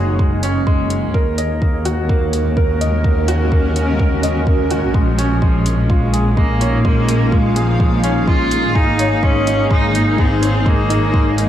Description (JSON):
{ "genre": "piano and strings electronica", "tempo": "126 BPM", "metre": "4/4", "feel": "straight", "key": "Bb minor", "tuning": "A4 = 440 Hz", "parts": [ { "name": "granular cloud pad", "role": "sustained chords", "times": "0.0-11.5 s", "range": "Ab3 to F5", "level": "-22 LUFS", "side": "left 1 dB", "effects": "built-in reverb, lush chorus, sidechain pumping" }, { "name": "clear upright piano", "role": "riff", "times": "0.0-11.5 s", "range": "Ab3 to Eb5", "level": "-21 LUFS", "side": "right 1 dB", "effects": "wide subtle chorus, tape echo" }, { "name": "muted chamber double bass section", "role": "bass", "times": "0.0-11.5 s", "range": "Gb1 to Eb2", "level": "-19 LUFS", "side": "equal", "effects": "sidechain pumping" }, { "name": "electronic kick drum", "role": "drums", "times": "0.2-11.2 s", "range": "none", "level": "-16 LUFS", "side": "equal", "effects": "none" }, { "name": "electronic hi-hat", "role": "drums", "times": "0.4-11.5 s", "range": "none", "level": "-27 LUFS", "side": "equal", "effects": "none" }, { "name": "rich cello", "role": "melody", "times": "5.0-11.5 s", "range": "F3 to F4", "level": "-19 LUFS", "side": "right 1 dB", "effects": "tape echo" } ], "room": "moderate plate reverb, RT60 1.2 s", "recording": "dreamy mix soaked in reverb", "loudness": "-13 LUFS", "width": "side -11 dB against mid", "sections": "0.0-11.5 A section", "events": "none", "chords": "0.0 Gbadd9; 1.1 Ebm; 5.0 Bbm7; 8.8 Absus4", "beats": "0.19 0.66 | 1.14 1.62 2.09 2.57 | 3.04 3.52 4.00 4.47 | 4.95 5.43 5.90 6.38 | 6.85 7.33 7.81 8.28 | 8.76 9.23 9.71 10.19 | 10.66 11.14" }